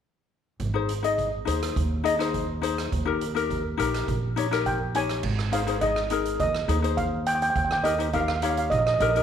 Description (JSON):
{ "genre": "calypso", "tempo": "104 BPM", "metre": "4/4", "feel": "straight", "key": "Ab major", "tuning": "A4 = 441 Hz", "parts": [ { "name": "upright bass", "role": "bass", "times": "0.6-9.2 s", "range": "Ab1 to Eb2", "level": "-29 LUFS", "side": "right 1 dB", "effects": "none" }, { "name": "street-band drum kit", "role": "drums", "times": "0.6-9.2 s", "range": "crash cymbal, hi-hat, kick drum, rim click", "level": "-34 LUFS", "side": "right 4 dB", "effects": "none" }, { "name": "ukulele", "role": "accompaniment", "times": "0.7-9.2 s", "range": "Eb4 to Eb5", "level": "-27 LUFS", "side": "left 6 dB", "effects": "none" }, { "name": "steel pan", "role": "melody", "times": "4.7-9.2 s", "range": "Eb5 to Ab5", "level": "-25 LUFS", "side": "right 3 dB", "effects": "none" } ], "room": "moderate echo chamber reverb, RT60 1.6 s, small room ambience", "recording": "1960s-style stereo", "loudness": "-23 LUFS", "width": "side -8 dB against mid", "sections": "0.6-5.2 A section; 5.2-9.2 B section", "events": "none", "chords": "0.6 Ab; 2.9 Eb; 5.2 Ab; 7.6 Eb", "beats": "| 0.60 1.18 1.76 2.34 | 2.92 3.50 4.08 4.66 | 5.24 5.82 6.40 6.98 | 7.56 8.14 8.72" }